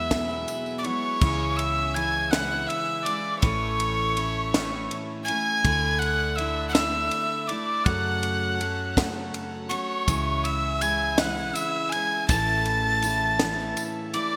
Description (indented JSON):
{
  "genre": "indie folk with a building arrangement",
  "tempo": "54 BPM (dotted quarters)",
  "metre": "6/8",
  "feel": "straight",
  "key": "unclear",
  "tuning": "A4 = 440 Hz",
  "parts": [
    { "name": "breathy mellow wooden whistle", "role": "melody", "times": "0.0-14.4 s", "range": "C#6 to A6", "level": "-29 LUFS", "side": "equal", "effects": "none" },
    { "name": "rich fiddle", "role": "second line", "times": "0.0-14.4 s", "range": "C#5 to A5", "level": "-33 LUFS", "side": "equal", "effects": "none" },
    { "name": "picked steel-string acoustic guitar", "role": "accompaniment", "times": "0.0-14.4 s", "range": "E2 to F#4", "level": "-34 LUFS", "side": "equal", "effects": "none" },
    { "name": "hand-pumped harmonium", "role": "sustained chords", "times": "0.0-14.4 s", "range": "C#3 to F#5", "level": "-41 LUFS", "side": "equal", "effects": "none" },
    { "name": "hollow-body short-scale picked electric bass", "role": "bass", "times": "0.0-13.7 s", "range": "A1 to F#2", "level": "-33 LUFS", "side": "equal", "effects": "none" },
    { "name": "compact cocktail drum kit", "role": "drums", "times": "0.1-14.3 s", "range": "crash cymbal, kick drum, ride cymbal, snare drum", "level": "-29 LUFS", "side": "equal", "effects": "gated reverb" },
    { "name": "tambourine", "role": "percussion", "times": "0.3-0.8, 10.1-14.2 s", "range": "none", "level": "-42 LUFS", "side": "equal", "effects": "none" }
  ],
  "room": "moderate lush hall reverb, RT60 2.9 s",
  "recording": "bright 1980s-style digital production",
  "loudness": "-25 LUFS",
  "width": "mono",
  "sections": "0.0-1.2 A section; 1.2-14.4 A section",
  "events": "none",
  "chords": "0.0 Eadd9; 1.2 C#m; 3.4 A; 5.6 Dsus2; 7.9 F#m; 10.1 C#m; 12.3 A"
}